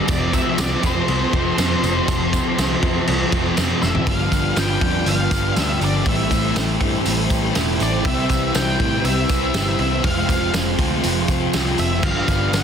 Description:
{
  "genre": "rock, shoegaze and dream pop",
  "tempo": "121 BPM",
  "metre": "4/4",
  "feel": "straight",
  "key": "unclear",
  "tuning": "A4 = 440 Hz",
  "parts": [
    { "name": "lush unison pad", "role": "sustained chords", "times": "0.0-12.6 s", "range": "Ab3 to D6", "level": "-29 LUFS", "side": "equal", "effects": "chorus" },
    { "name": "twelve-string electric guitar", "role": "arpeggios", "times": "0.0-12.6 s", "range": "F3 to A4", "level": "-30 LUFS", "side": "right 1 dB", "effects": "none" },
    { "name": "crunchy overdriven guitar", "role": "riff", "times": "0.0-12.6 s", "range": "F2 to F4", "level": "-25 LUFS", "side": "right 12 dB", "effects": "reverse reverb" },
    { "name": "thick fuzz guitar", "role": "riff", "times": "0.0-12.6 s", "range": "F2 to C4", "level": "-24 LUFS", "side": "left 11 dB", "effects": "distortion, lush chorus" },
    { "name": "octave-fuzz lead guitar", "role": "melody", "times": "0.1-12.6 s", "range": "C5 to G5", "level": "-26 LUFS", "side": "left 2 dB", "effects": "distortion, tape echo" },
    { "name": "vintage muted picked electric bass", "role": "bass", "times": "0.1-12.6 s", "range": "E1 to A2", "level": "-24 LUFS", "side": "equal", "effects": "none" },
    { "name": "loose indie drum kit", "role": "drums", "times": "0.1-12.6 s", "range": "crash cymbal, hi-hat, kick drum, snare drum, toms", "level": "-23 LUFS", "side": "equal", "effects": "none" },
    { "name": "tambourine", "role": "percussion", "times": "0.1-12.6 s", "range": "none", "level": "-34 LUFS", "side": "right 9 dB", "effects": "none" }
  ],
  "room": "light reverb, small room ambience",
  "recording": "dense, heavily limited modern master",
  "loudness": "-17 LUFS",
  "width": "side -7 dB against mid",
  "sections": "0.0-4.1 A section; 4.1-12.6 B section",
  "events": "drum fill 3.8",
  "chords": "0.1 F6; 4.1 G7; 6.1 Am7; 8.1 Cmaj7; 10.0 Fmadd9; 12.0 G7"
}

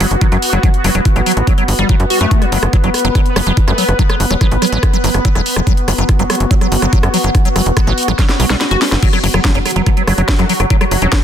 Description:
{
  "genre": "psychedelic trance",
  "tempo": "143 BPM",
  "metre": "4/4",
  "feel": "straight",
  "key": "F# minor",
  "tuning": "A4 = 441 Hz",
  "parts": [
    { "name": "bubbling stepped-filter texture", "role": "sustained chords", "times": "0.0-11.2 s", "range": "F#3 to B4", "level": "-19 LUFS", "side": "equal", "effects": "chorus, built-in reverb, sidechain pumping" },
    { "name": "liquid acid bass", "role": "riff", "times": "0.0-11.2 s", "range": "F#3 to F#4", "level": "-18 LUFS", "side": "moving between left 4 dB and right 5 dB", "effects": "phaser, auto-pan, sidechain pumping, digital delay" },
    { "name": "tight sequencer bass", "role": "bass", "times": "0.0-11.1 s", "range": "E1 to F#2", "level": "-15 LUFS", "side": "equal", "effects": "none" },
    { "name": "drum and bass drum kit", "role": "drums", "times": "0.0-11.2 s", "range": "crash cymbal, hi-hat, rim click, snare drum", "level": "-19 LUFS", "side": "equal", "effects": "overdrive" },
    { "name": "electronic kick drum", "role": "drums", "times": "0.2-11.2 s", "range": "none", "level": "-12 LUFS", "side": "equal", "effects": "overdrive" },
    { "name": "formant-sweep wobble bass", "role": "second line", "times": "3.0-4.5, 9.8-11.2 s", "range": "F#3 to C#4", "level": "-28 LUFS", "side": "left 6 dB", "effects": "none" }
  ],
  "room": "little or no reverb",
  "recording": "dense, heavily limited modern master",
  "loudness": "-11 LUFS",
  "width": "side -9 dB against mid",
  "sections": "0.0-11.2 A section",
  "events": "drum fill 8.2-9.0; kick drops out 8.6-9.0",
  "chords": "0.0 F#5"
}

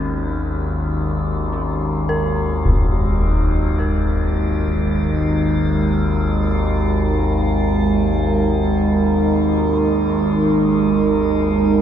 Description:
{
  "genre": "dark ambient drone",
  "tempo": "free time",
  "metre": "none",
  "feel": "none",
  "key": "unclear",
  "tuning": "A4 = 436 Hz",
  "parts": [
    { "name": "dark analog pad", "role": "sustained chords", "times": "0.0-11.8 s", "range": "G#3 to A#4", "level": "-20 LUFS", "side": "right 3 dB", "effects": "chorus, shimmer reverb" },
    { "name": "dark detuned synth bell", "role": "arpeggios", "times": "0.0-11.8 s", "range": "C#4 to A#4", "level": "-30 LUFS", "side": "right 1 dB", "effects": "chorus, tape echo, shimmer reverb" },
    { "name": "overtone-sweeping drone", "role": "drone", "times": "0.0-11.8 s", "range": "G#1 to D#2", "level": "-19 LUFS", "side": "left 1 dB", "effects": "chorus, built-in reverb" },
    { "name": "metallic inharmonic drone", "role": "texture", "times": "0.0-11.8 s", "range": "D#4", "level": "-28 LUFS", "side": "left 3 dB", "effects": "chorus, built-in reverb, shimmer reverb" },
    { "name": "concert bass drum", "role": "percussion", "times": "2.7-2.9 s", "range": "none", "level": "-21 LUFS", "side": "left 1 dB", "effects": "low-pass filter on kick" }
  ],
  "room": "wet echo chamber reverb, RT60 2.0 s, digital ambience",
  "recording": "echo-heavy mix",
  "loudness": "-16 LUFS",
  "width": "side -9 dB against mid",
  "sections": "0.0-11.8 A section",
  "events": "fade-in on synth drone 0.0-11.8; fade-out on synth bell 0.0-11.8",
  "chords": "0.0 G#5"
}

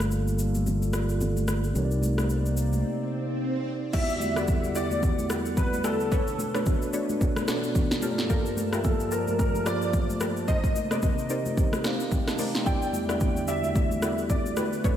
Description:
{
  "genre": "amapiano",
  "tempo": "110 BPM",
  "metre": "4/4",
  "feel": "swing 58% on 16ths",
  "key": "unclear",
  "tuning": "A4 = 440 Hz",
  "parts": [
    { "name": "mellow tine electric piano", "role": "accompaniment", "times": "0.0-14.9 s", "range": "A3 to C6", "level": "-32 LUFS", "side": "right 2 dB", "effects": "medium stereo tremolo, low-pass filter" },
    { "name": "hollow soft pad", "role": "sustained chords", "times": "0.0-15.0 s", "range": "E2 to A5", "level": "-33 LUFS", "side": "equal", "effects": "chorus, low-pass filter" },
    { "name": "modern bright fingered electric bass", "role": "bass", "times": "0.0-2.8 s", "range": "G1 to C2", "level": "-26 LUFS", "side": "equal", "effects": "none" },
    { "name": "deep house drum kit", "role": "drums", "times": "0.0-15.0 s", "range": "crash cymbal, hi-hat, kick drum, rim click, shaker, snare drum", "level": "-28 LUFS", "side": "equal", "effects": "overdrive" },
    { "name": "congas", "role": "percussion", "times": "0.0-15.0 s", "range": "none", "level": "-33 LUFS", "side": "left 1 dB", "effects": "none" },
    { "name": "swell", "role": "sound effects", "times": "2.5-3.9 s", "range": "none", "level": "-35 LUFS", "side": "equal", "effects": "none" },
    { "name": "warm concert grand piano", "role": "melody", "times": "3.9-15.0 s", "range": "A4 to G5", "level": "-31 LUFS", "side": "equal", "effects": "ensemble chorus, low-pass filter, diffuse ambient delay" },
    { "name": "punchy chord stab", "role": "stabs", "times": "3.9-15.0 s", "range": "D4 to Eb5", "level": "-36 LUFS", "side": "left 1 dB", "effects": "chorus, diffuse ambient delay" }
  ],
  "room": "moderate lush hall reverb, RT60 2.1 s",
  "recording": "dreamy mix soaked in reverb",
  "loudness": "-24 LUFS",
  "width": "side -10 dB against mid",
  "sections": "0.0-3.9 A section; 3.9-15.0 B section",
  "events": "filter sweep 0.0-3.9; swell 2.5-3.9; break 2.8-3.9",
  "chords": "0.0 Gm9; 1.8 Cm9; 3.9 Em9; 6.1 Bm9; 8.0 Gm9; 10.5 Cm9; 12.7 Em9"
}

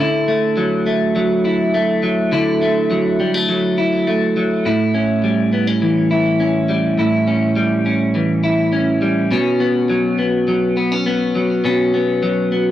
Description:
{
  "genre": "dream pop",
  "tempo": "103 BPM",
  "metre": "4/4",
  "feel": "straight",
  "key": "D major",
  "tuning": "A4 = 438 Hz",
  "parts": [
    { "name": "clean electric guitar", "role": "solo", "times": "0.0-12.7 s", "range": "A2 to E4", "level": "-14 LUFS", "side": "equal", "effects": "lush chorus, tape echo" }
  ],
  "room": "light reverb",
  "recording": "dry, gritty hardware recording",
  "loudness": "-14 LUFS",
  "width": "side -12 dB against mid",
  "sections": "0.0-12.7 A section",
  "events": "none",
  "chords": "0.0 Dadd9; 4.7 A7; 9.3 Bsus2"
}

